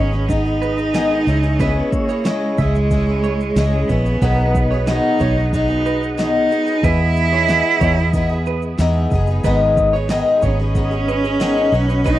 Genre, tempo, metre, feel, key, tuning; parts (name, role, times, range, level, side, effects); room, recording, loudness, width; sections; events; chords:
acoustic pop; 92 BPM; 4/4; straight; A4 = 440 Hz
clear cello; melody; 0.0-12.2 s; G#3 to E4; -20 LUFS; right 2 dB
picked twelve-string acoustic guitar; accompaniment; 0.0-12.2 s; G#2 to B4; -20 LUFS; left 4 dB
mellow tonewheel organ; sustained chords; 0.0-12.2 s; G#4 to D#6; -31 LUFS; right 1 dB; chorus vibrato, slow rotary speaker
clean electric guitar; arpeggios; 0.0-12.2 s; B4 to E5; -26 LUFS; right 8 dB
vintage muted fingered electric bass; bass; 0.0-12.2 s; F#1 to E2; -19 LUFS; equal
deep house drum kit; drums; 0.1-12.2 s; kick drum, shaker, snare drum; -22 LUFS; equal; overdrive
little or no reverb; dry, close 1970s-style studio recording; -15 LUFS; side -14 dB against mid
0.0-12.2 A section
0.0 G#m; 1.3 C#m; 4.2 B6; 6.8 Emaj7; 9.4 G#m